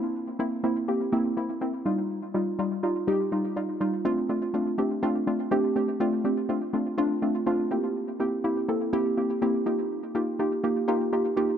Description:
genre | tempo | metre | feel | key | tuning
pop | 123 BPM | 4/4 | straight | F major | A4 = 440 Hz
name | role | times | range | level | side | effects
soft round pluck | solo | 0.0-11.6 s | G3 to A4 | -24 LUFS | equal | chorus, digital delay
room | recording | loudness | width
light reverb | none | -24 LUFS | side -8 dB against mid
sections
0.0-4.1 A section; 4.1-11.6 B section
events
none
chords
0.0 C7; 1.9 Ebadd9; 4.1 F6; 7.7 C7; 9.7 Ebadd9

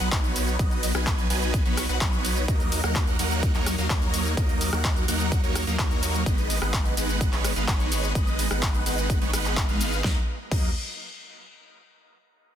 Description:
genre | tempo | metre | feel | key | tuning
EDM, festival progressive house | 127 BPM | 4/4 | straight | Eb minor | A4 = 440 Hz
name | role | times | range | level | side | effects
big supersaw lead | riff | 0.0-10.7 s | F#3 to Ab5 | -28 LUFS | right 1 dB | phaser, sidechain pumping, dub echo
saturated sub bass | bass | 0.0-10.7 s | Ab1 to Eb2 | -29 LUFS | equal | sidechain pumping
big-room dance drum kit | drums | 0.0-10.6 s | cabasa, crash cymbal, handclaps, hi-hat, ride cymbal, rim click, snare drum | -30 LUFS | equal | none
electronic kick drum | drums | 0.1-10.6 s | none | -25 LUFS | equal | none
room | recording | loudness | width
little or no reverb | dense, heavily limited modern master | -22 LUFS | side -10 dB against mid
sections
0.0-10.0 A section; 10.0-11.9 B section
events
drop 0.0-10.0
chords
0.0 B; 2.5 Ebm; 6.3 Abm; 10.0 Ebm

